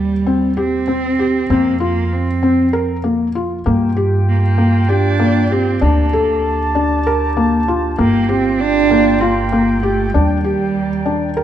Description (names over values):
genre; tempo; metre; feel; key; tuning
contemporary instrumental, chamber music in an uneven meter; 195 BPM (eighths); 7/8; straight; Eb lydian; A4 = 439 Hz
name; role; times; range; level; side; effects
dark cello; melody; 0.0-11.4 s; G3 to D4; -18 LUFS; right 6 dB; none
felt-muted upright piano; arpeggios; 0.0-11.4 s; Bb3 to Bb4; -17 LUFS; left 2 dB; none
upright bass; bass; 0.0-11.4 s; G1 to G2; -19 LUFS; right 1 dB; none
mellow woodwind section; sustained chords; 3.7-11.4 s; Eb3 to A5; -22 LUFS; equal; none
room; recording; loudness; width
moderate recital hall reverb, RT60 1.7 s; dark, warm production; -13 LUFS; side -10 dB against mid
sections
0.0-11.4 A section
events
none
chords
0.0 Eb6; 1.5 Fsus4; 3.7 Gm7; 5.8 Bbmaj7/D; 8.0 Gm7; 10.1 Ebmaj7